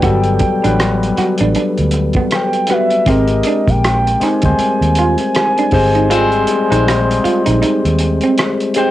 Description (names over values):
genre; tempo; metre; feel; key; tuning
R&B, neo-soul; 79 BPM; 4/4; swing 59% on 16ths; unclear; A4 = 444 Hz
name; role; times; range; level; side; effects
gliding portamento lead; melody; 0.0-8.9 s; Eb5 to Ab5; -18 LUFS; right 1 dB; chorus, cassette tape
electric guitar through a small old amp; second line; 0.0-8.9 s; B3 to F#4; -18 LUFS; right 4 dB; none
overdriven tine electric piano; accompaniment; 0.0-8.9 s; F#3 to C5; -16 LUFS; left 3 dB; phaser
vintage muted fingered electric bass; bass; 0.0-8.2 s; G1 to Eb2; -16 LUFS; right 1 dB; none
cloth-damped thuddy drum kit; drums; 0.0-8.9 s; hi-hat, kick drum, rim click; -20 LUFS; right 1 dB; cassette tape
room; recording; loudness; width
light reverb; home recording on cassette; -11 LUFS; side -14 dB against mid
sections
0.0-8.9 A section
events
kick muted 6.1-8.9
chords
0.0 Gmaj9; 3.1 Abmaj9